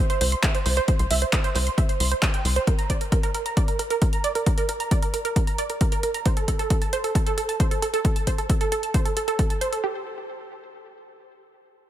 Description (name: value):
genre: uplifting trance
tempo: 134 BPM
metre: 4/4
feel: straight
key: unclear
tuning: A4 = 440 Hz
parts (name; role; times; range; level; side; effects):
- wide unison pluck; arpeggios; 0.0-10.0 s; G4 to C6; -26 LUFS; right 4 dB; sidechain pumping, ping-pong delay
- punchy analog drum machine; drums; 0.1-9.8 s; handclaps, hi-hat; -29 LUFS; equal; overdrive
- tight sequencer bass; bass; 0.2-2.6 s; C2; -23 LUFS; left 1 dB; sidechain pumping
- electronic kick drum; drums; 0.4-9.5 s; none; -22 LUFS; equal; overdrive
room: light reverb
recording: none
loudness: -21 LUFS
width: side -12 dB against mid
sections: 0.0-9.8 A section; 9.8-11.9 B section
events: none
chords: 0.0 C5; 2.7 N.C.